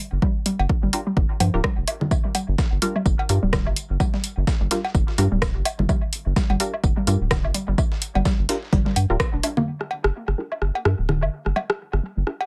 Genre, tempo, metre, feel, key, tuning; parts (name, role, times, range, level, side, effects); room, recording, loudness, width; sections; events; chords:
minimal techno; 127 BPM; 4/4; swing 58% on 16ths; G minor; A4 = 437 Hz
round analog bass; bass; 0.1-12.2 s; D1 to G2; -25 LUFS; equal; sidechain pumping
hollow square pluck; riff; 0.2-12.2 s; F3 to D4; -29 LUFS; equal; chorus, sidechain pumping, dub echo
electronic kick drum; drums; 0.2-9.3 s; -25 LUFS; equal; overdrive
punchy analog drum machine; drums; 0.5-9.5 s; hi-hat, rim click; -27 LUFS; equal; overdrive, low-pass filter on snare, low-pass filter on hats
electronic cowbell, woodblock, congas and rim click; percussion; 0.6-12.5 s; -28 LUFS; equal; dub echo
filtered dub chord stab; stabs; 0.9-12.3 s; D4 to Bb4; -31 LUFS; equal; subtle chorus, cassette tape, dub echo
electronic tambourine and snare drum; drums; 2.1-9.6 s; -38 LUFS; equal; overdrive, sidechain pumping on perc, high-pass filter on perc, high-pass filter on snare
little or no reverb; -22 LUFS; mono
0.0-9.7 A section; 9.7-12.5 B section
band accent 9.2; filter sweep on synth arpeggio sound 9.7-12.5
0.0 G5